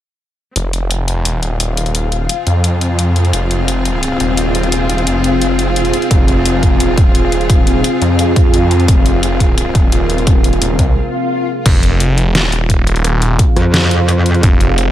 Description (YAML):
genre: dark technical drum and bass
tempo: 173 BPM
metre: 4/4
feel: straight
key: F minor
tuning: A4 = 440 Hz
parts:
  - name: deep dark ambient pad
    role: sustained chords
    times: 1.5-14.9 s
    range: C4 to F5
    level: -18 LUFS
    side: left 1 dB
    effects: chorus, built-in reverb, sidechain pumping
  - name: snarling distorted saw bass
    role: bass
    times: 0.6-14.9 s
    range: Eb1 to F2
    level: -15 LUFS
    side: equal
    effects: distortion, tube saturation
  - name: dubstep drum kit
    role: drums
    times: 0.6-14.8 s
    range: crash cymbal, hi-hat, rim click, snare drum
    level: -19 LUFS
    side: left 1 dB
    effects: none
  - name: clear studio string section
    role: texture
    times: 0.6-11.0 s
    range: C4 to F5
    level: -22 LUFS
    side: equal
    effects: sidechain pumping
  - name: electronic kick drum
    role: drums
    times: 6.1-14.5 s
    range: none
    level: -11 LUFS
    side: equal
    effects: none
  - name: swell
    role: sound effects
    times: 11.1-11.7 s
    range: none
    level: -22 LUFS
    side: left 1 dB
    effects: none
  - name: metallic wobble bass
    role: bass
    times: 13.6-14.4 s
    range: F2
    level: -11 LUFS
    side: equal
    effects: distortion, chorus
room: light reverb, digital ambience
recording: none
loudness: -11 LUFS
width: side -12 dB against mid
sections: 0.6-11.7 A section; 11.7-14.9 B section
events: fade-in on string section 0.6-11.7; break 11.0-11.7; swell 11.1-11.7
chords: 0.6 Fm